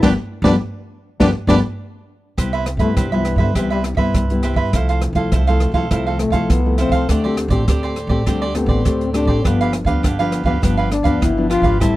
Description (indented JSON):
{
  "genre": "samba and choro",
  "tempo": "102 BPM",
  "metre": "4/4",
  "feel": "straight",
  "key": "C major",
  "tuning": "A4 = 439 Hz",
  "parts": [
    { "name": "breathy trombone", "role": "second line", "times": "0.0-12.0 s", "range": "D3 to F4", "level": "-21 LUFS", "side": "left 4 dB", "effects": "none" },
    { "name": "cavaquinho", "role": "accompaniment", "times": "0.0-11.9 s", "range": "D4 to A5", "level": "-23 LUFS", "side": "right 6 dB", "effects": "none" },
    { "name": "nylon-string guitar", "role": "accompaniment", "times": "0.0-12.0 s", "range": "G2 to G4", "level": "-21 LUFS", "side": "left 2 dB", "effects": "none" },
    { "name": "upright bass", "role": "bass", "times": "0.0-12.0 s", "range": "G1 to G2", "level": "-21 LUFS", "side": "right 1 dB", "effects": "none" },
    { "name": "open jazz drum kit", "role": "drums", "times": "0.0-12.0 s", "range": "hi-hat, kick drum, rim click, snare drum", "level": "-20 LUFS", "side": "equal", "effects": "none" }
  ],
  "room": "little or no reverb",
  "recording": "dry, close 1970s-style studio recording",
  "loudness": "-15 LUFS",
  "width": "side -16 dB against mid",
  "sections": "0.0-2.4 A section; 2.4-12.0 B section",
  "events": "trombone solo 0.0-2.4, 2.4-12.0; band accent 0.0-2.4",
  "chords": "0.0 G7; 2.4 Cmaj7; 4.7 Fmaj7/C; 7.1 D7sus4; 9.5 G7"
}